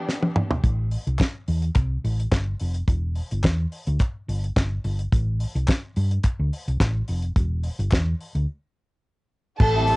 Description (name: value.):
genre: disco.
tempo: 107 BPM.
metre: 4/4.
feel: straight.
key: A minor.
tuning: A4 = 437 Hz.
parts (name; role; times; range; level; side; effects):
electric guitar at the edge of break-up; accompaniment; 0.0-0.1, 9.6-10.0 s; G3 to A4; -27 LUFS; right 2 dB; cassette tape.
warm studio string section; sustained chords; 0.0-0.6, 9.6-10.0 s; E3 to G4; -35 LUFS; equal; cassette tape.
damped 70s drum kit; drums; 0.1-10.0 s; crash cymbal, hi-hat, kick drum, snare drum, toms; -22 LUFS; equal; cassette tape.
hollow-body short-scale fingered electric bass; bass; 0.6-9.9 s; E1 to G2; -23 LUFS; equal; none.
group handclap; percussion; 1.2-8.1 s; none; -34 LUFS; left 2 dB; none.
warm studio violin section; second line; 9.6-10.0 s; A4 to A5; -20 LUFS; equal; cassette tape.
room: little or no reverb.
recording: home recording on cassette, nothing above 11.0 kHz.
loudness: -21 LUFS.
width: side -24 dB against mid.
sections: 0.6-9.6 A section.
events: band accent 0.0-0.6; drum fill 0.1-0.6; break 8.5-9.6.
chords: 0.0 Em7; 0.6 Am7; 2.9 Em; 5.1 Am7; 7.4 N.C..